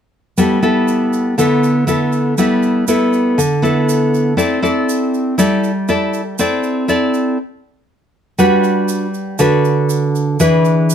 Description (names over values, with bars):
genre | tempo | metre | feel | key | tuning
bossa nova | 120 BPM | 4/4 | straight | G major | A4 = 436 Hz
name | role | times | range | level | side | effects
nylon-string guitar | accompaniment | 0.4-10.9 s | D3 to D5 | -13 LUFS | equal | none
tube shaker | percussion | 0.4-10.9 s | none | -28 LUFS | right 9 dB | none
warm baby grand piano | accompaniment | 8.4-10.4 s | F#5 | -21 LUFS | right 7 dB | none
room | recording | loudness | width
light reverb | none | -13 LUFS | side -8 dB against mid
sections
0.4-8.4 A section; 8.4-10.9 B section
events
stop 7.4-8.4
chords
0.4 G69; 4.4 C69; 7.4 N.C.; 8.4 Gmaj7; 10.4 E7